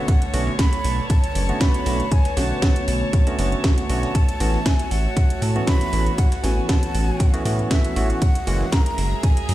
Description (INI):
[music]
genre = deep house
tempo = 118 BPM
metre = 4/4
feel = swing 54% on 16ths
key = B dorian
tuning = A4 = 439 Hz
[part]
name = breathy mellow silver concert flute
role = melody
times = 0.0-9.5 s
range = E5 to B5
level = -30 LUFS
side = equal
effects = tape echo
[part]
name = airy breathy pad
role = sustained chords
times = 0.0-9.5 s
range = D3 to F#5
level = -32 LUFS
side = right 5 dB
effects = chorus, phaser, vintage 12-bit sampler grit, sidechain pumping
[part]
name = barky tine electric piano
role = stabs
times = 0.0-8.7 s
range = D3 to F#4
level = -27 LUFS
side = equal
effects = sidechain pumping, tape echo
[part]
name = warm studio string section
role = texture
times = 0.0-9.5 s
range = D3 to A#5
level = -30 LUFS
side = equal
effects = sidechain pumping
[part]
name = dusty soul sampler-style drum kit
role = drums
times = 0.1-9.5 s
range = hi-hat, ride cymbal, snare drum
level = -38 LUFS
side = right 2 dB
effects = none
[part]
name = electronic kick drum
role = drums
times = 0.1-9.3 s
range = none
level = -18 LUFS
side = equal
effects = none
[part]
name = house drum kit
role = drums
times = 0.1-9.5 s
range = hi-hat, snare drum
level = -28 LUFS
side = right 1 dB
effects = none
[part]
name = round analog bass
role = bass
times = 0.3-9.5 s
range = F#1 to A2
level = -22 LUFS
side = equal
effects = sidechain pumping
[sound]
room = digital ambience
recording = played on a big sound system in a bare room, stone room reverb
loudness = -18 LUFS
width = side -15 dB against mid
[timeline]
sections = 0.0-9.5 A section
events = none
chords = 0.0 Bm9; 4.2 A6; 8.2 F#9